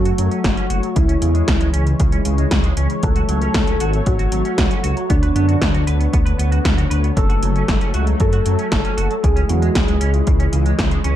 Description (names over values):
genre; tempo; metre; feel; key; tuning
synthwave; 116 BPM; 4/4; straight; F# minor; A4 = 439 Hz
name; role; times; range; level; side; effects
soft octave-layered synth lead; melody; 0.0-10.3 s; D4 to A4; -24 LUFS; equal; chorus, ping-pong delay
lush unison pad; sustained chords; 0.0-11.2 s; D3 to C#5; -25 LUFS; left 2 dB; chorus, sidechain pumping
wide detuned saw bass; bass; 0.0-11.2 s; F#1 to F#2; -18 LUFS; equal; chorus, tube saturation
semi-hollow electric guitar; riff; 0.1-11.1 s; C#3 to B4; -29 LUFS; right 4 dB; ensemble chorus, low-pass filter, digital delay
80s electronic pad drums; drums; 0.1-11.1 s; hi-hat, snare drum; -23 LUFS; equal; none
electronic kick drum; drums; 0.4-10.9 s; none; -19 LUFS; equal; none
room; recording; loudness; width
digital ambience; dark, warm production; -15 LUFS; side -12 dB against mid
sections
0.0-11.2 A section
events
none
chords
0.0 F#m; 1.0 C#m; 3.0 F#m; 5.1 Bmadd9/D; 7.2 F#m; 9.2 C#m